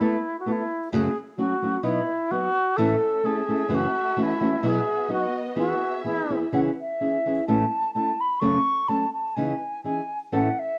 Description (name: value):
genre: mexican folk, mariachi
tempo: 128 BPM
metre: 2/4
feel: swing 54% on 8ths, rubato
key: E major, C# minor from 6.5 s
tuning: A4 = 440 Hz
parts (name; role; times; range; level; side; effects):
- mellow wooden flute; melody; 0.0-10.8 s; E4 to C#6; -28 LUFS; equal; none
- nylon-string guitar; accompaniment; 0.0-10.5 s; F#2 to A4; -27 LUFS; equal; none
- dark symphonic violin section; sustained chords; 2.8-6.5 s; A3 to E5; -36 LUFS; equal; none
room: moderate spring reverb, RT60 1.2 s, small room ambience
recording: home recording on cassette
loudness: -25 LUFS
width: mono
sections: 0.0-6.5 A section; 6.5-10.8 B section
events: none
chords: 0.0 Asus2; 0.9 F#m; 1.8 B; 2.8 A; 3.7 F#m7; 4.6 Bsus4; 5.1 B; 5.6 E; 6.5 C#m; 7.5 A; 8.4 F#m; 9.4 C#madd9